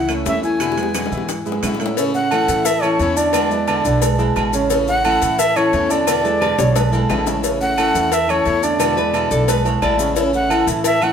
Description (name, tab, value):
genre	latin, Cuban son and guajira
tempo	176 BPM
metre	4/4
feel	straight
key	A major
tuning	A4 = 443 Hz
part	breathy bright jazz flute	melody	0.0-11.1 s	C#5 to G#5	-20 LUFS	right 1 dB	none
part	dark grand piano	arpeggios	0.0-11.1 s	C#3 to E5	-22 LUFS	right 1 dB	none
part	upright bass	bass	0.0-11.1 s	A1 to A2	-24 LUFS	right 1 dB	none
part	picked plugged-in steel-string acoustic guitar	accompaniment	0.1-11.1 s	B2 to E4	-24 LUFS	left 3 dB	none
part	claves	percussion	0.1-11.1 s	none	-32 LUFS	right 6 dB	none
part	maracas	percussion	0.1-11.1 s	none	-29 LUFS	left 7 dB	none
part	timbales and agogo bells	percussion	0.1-11.1 s	none	-23 LUFS	right 4 dB	none
part	bongos and cowbell	percussion	0.3-11.0 s	none	-25 LUFS	left 6 dB	none
part	nylon-string guitar	second line	6.2-10.2 s	G#4 to D5	-24 LUFS	left 3 dB	none
room	moderate studio reverb, RT60 0.9 s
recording	band playing live in one room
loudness	-15 LUFS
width	side -7 dB against mid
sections	0.0-2.0 A section; 2.0-11.1 B section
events	drum fill 0.6-2.0, 6.4-7.4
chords	0.0 A; 0.6 E7; 2.0 A; 3.3 E7; 4.7 A; 6.1 E7; 7.4 A; 8.8 E7; 10.2 A